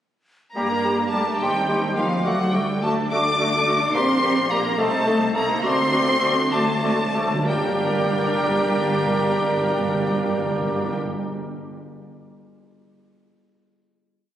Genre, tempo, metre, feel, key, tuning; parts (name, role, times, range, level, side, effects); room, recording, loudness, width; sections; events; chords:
quick classical-period movement for symphony orchestra; 62-73 BPM (dotted quarters); 6/8; rubato; G minor; A4 = 445 Hz
rich chamber violin section; melody; 0.6-11.0 s; F5 to D6; -28 LUFS; left 1 dB
clear clarinet; second line; 0.6-10.9 s; F#4 to A4; -29 LUFS; left 2 dB
mellow cor anglais; second line; 0.6-11.0 s; C5 to Eb5; -30 LUFS; right 1 dB
mellow silver concert flute; second line; 0.6-10.9 s; D5 to D6; -28 LUFS; equal
warm symphonic violin section; second line; 0.6-11.0 s; G4 to D6; -30 LUFS; left 1 dB
rich chamber viola section; accompaniment; 0.6-10.9 s; A3 to C5; -29 LUFS; equal
warm bassoon; accompaniment; 0.6-11.0 s; G3 to Bb3; -29 LUFS; equal
mellow French horn section; sustained chords; 0.6-10.9 s; F3 to D4; -29 LUFS; left 1 dB
warm chamber cello section; bass; 0.6-11.0 s; F3 to D4; -28 LUFS; right 2 dB
warm chamber double bass section; bass; 0.6-10.9 s; G1 to G2; -30 LUFS; right 1 dB
timpani; percussion; 5.6-10.9 s; G2 to D3; -29 LUFS; right 1 dB
wet concert hall reverb, RT60 2.5 s; recorded on a phone in the room, studio reverb; -19 LUFS; side -11 dB against mid
0.6-7.5 A section; 7.5-11.1 final chord
slowing down 3.1-7.5; timpani fill 5.6-7.5
0.6 Gm; 1.4 Cm/Eb; 2.3 D; 3.9 Gm/Bb; 4.8 Adim/C; 5.6 D7; 7.5 Gm